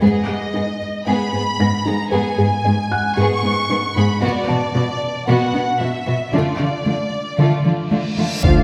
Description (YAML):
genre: cinematic, hybrid orchestral and electronic film score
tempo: 114 BPM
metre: 4/4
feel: straight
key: unclear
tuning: A4 = 438 Hz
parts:
  - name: warm symphonic violin section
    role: melody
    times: 0.0-8.6 s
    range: D5 to C#6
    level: -26 LUFS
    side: equal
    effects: none
  - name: warm symphonic violin section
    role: second line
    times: 0.0-8.6 s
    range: A3 to F5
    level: -26 LUFS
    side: equal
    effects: none
  - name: resonant blip pluck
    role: arpeggios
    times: 0.0-8.6 s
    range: D3 to B4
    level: -26 LUFS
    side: equal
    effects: phaser
  - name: rich symphonic cello section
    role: bass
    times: 0.0-8.6 s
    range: G#2 to D4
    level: -23 LUFS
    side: equal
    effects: none
  - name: felt-muted upright piano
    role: texture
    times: 0.0-6.4 s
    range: F#5 to Bb6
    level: -33 LUFS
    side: equal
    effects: none
  - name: reverse cymbal and impact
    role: sound effects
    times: 8.0-8.6 s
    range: none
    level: -23 LUFS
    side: equal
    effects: none
  - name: warm symphonic viola section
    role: accompaniment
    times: 8.4-8.6 s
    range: F3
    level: -21 LUFS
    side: equal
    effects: none
  - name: warm trombone section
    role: sustained chords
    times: 8.4-8.6 s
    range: F3 to A3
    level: -24 LUFS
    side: equal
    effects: none
  - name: warm symphonic double bass section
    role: bass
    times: 8.4-8.5 s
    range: D2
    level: -20 LUFS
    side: equal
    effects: none
room: wet recital hall reverb, RT60 1.5 s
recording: recorded in a church or concert hall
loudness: -19 LUFS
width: mono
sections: 0.0-8.4 A section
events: reverse cymbal 8.0-8.4; impact 8.4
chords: 0.0 G#m; 4.2 Bm; 6.3 Dm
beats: | 0.02 0.54 1.07 1.60 | 2.12 2.65 3.17 3.70 | 4.23 4.75 5.28 5.81 | 6.33 6.86 7.38 7.91 | 8.44